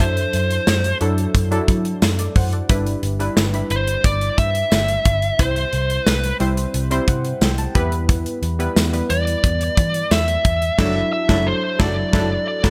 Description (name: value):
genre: 1980s-style pop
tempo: 89 BPM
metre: 4/4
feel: straight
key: D mixolydian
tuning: A4 = 440 Hz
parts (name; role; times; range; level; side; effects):
- biting lead guitar; melody; 0.0-12.7 s; C5 to E5; -24 LUFS; equal; overdrive, delay
- warm analog keys; accompaniment; 0.0-12.7 s; F#3 to B5; -27 LUFS; equal; chorus
- vintage muted picked electric bass; bass; 0.0-12.7 s; F#1 to F#3; -24 LUFS; equal; none
- modern studio drum kit; drums; 0.0-12.7 s; crash cymbal, hi-hat, kick drum, snare drum, tambourine; -22 LUFS; equal; gated reverb
room: small room ambience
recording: none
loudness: -19 LUFS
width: mono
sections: 0.0-12.7 A section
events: synth keys fill 6.7-8.1; band accent 10.8-12.7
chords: 0.0 Dadd9/F#; 2.7 G6; 5.4 C; 7.8 Em; 10.8 Dadd9/F#